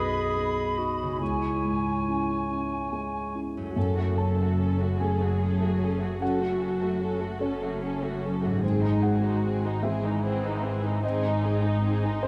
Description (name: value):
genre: cinematic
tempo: 46-50 BPM (dotted quarters)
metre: 6/8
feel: rubato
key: unclear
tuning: A4 = 440 Hz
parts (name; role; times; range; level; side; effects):
- bright flute section; second line; 0.0-3.4 s; G#5 to B5; -36 LUFS; equal; none
- clear clarinet; second line; 0.0-2.5 s; E4 to G#4; -34 LUFS; equal; none
- mellow oboe; second line; 0.0-3.4 s; C#5 to D#5; -36 LUFS; equal; none
- dark concert grand piano; accompaniment; 0.0-12.3 s; B1 to A5; -33 LUFS; equal; none
- concert harp; arpeggios; 0.0-12.3 s; F#2 to F#4; -39 LUFS; equal; none
- muted symphonic violin section; second line; 3.7-12.3 s; G#3 to D#4; -37 LUFS; equal; none
- muted symphonic violin section; melody; 3.8-12.3 s; D#4 to A4; -37 LUFS; equal; none
- muted symphonic cello section; bass; 3.8-12.3 s; F#2 to G#2; -32 LUFS; equal; none
- muted symphonic double bass section; bass; 3.8-12.3 s; F#1 to G#1; -34 LUFS; equal; none
- muted symphonic viola section; accompaniment; 4.2-12.3 s; E3 to A4; -36 LUFS; equal; none
room: moderate scoring stage reverb, RT60 1.9 s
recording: none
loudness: -27 LUFS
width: mono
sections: 0.0-3.8 A section; 3.8-12.3 B section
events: none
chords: 0.0 B; 1.2 C#m; 3.8 F#m; 8.6 G#